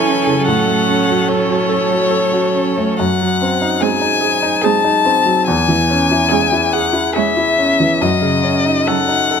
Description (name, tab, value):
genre	classical, slow romantic movement for piano quintet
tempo	72 BPM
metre	3/4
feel	uneven beats, rubato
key	C# minor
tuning	A4 = 439 Hz
part	warm violin	melody	0.0-9.4 s	C#5 to A5	-16 LUFS	left 6 dB	none
part	rich cello	second line	0.0-9.4 s	E3 to G#3	-23 LUFS	right 12 dB	none
part	rich violin	second line	0.0-9.4 s	G#4 to A4	-23 LUFS	equal	none
part	clear grand piano	accompaniment	0.0-9.4 s	E2 to A4	-16 LUFS	right 1 dB	none
part	rich viola	accompaniment	0.0-9.4 s	B#3 to C#4	-24 LUFS	right 9 dB	none
room	moderate recital hall reverb, RT60 1.5 s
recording	close, detailed microphones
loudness	-12 LUFS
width	side -6 dB against mid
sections	0.0-9.4 A section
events	none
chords	0.5 F#m/A; 3.0 G#7/F#; 5.5 C#m/E; 8.0 D#m7b5/F#